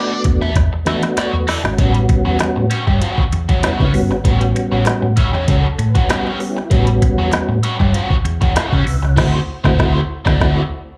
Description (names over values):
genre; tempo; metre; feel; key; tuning
funk; 98 BPM; 4/4; straight; A mixolydian; A4 = 440 Hz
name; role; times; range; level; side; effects
crunchy overdriven guitar; accompaniment; 0.0-10.6 s; G3 to E5; -25 LUFS; equal; wah, plate reverb, slapback echo
mellow tonewheel organ; stabs; 0.0-10.6 s; G3 to F#5; -24 LUFS; equal; chorus vibrato, slow rotary speaker, plate reverb, slapback echo
hollow-body short-scale fingered electric bass; bass; 0.2-10.6 s; G1 to E3; -19 LUFS; equal; none
organic electronic drum kit; drums; 0.2-10.6 s; crash cymbal, hi-hat, kick drum, snare drum; -19 LUFS; equal; none
group handclap; percussion; 1.2-8.7 s; none; -33 LUFS; equal; none
room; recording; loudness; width
light reverb; live gig heard through the venue's PA, club reverb; -16 LUFS; mono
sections
0.0-1.8 A section; 1.8-11.0 B section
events
drum fill 0.6-1.8; tonewheel organ fill 4.9-6.7; band accent 9.2-11.0; silent gap 10.4-11.0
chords
0.0 E9sus4; 1.8 A13; 9.2 D9